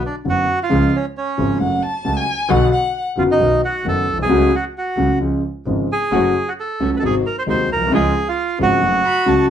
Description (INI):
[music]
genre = tango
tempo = 133 BPM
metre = 4/4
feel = rubato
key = F# harmonic minor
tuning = A4 = 438 Hz
[part]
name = bandoneon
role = melody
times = 0.0-9.5 s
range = C#4 to B#4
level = -19 LUFS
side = right 2 dB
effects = none
[part]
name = warm concert grand piano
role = accompaniment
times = 0.2-9.5 s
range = D#1 to F#4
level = -18 LUFS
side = left 1 dB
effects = none
[part]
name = bright double bass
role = bass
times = 0.3-9.5 s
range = F#1 to D#2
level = -24 LUFS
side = right 2 dB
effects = none
[part]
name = dark violin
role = second line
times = 1.6-3.0, 9.0-9.5 s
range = F#5 to B5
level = -21 LUFS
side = left 2 dB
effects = none
[part]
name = muted chamber string section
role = stabs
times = 6.1-9.5 s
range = G#3 to F#4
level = -27 LUFS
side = right 2 dB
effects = none
[sound]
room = wet studio reverb, RT60 0.6 s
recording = band playing live in one room, nothing above 10.6 kHz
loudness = -15 LUFS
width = side -9 dB against mid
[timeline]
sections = 0.0-9.5 A section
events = none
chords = 0.0 Bm; 0.7 C#; 1.6 F#m; 2.5 Bm; 3.4 B; 4.3 F#m/C#; 5.2 C#; 6.1 F#m; 7.0 G#7; 7.9 C#; 8.8 F#m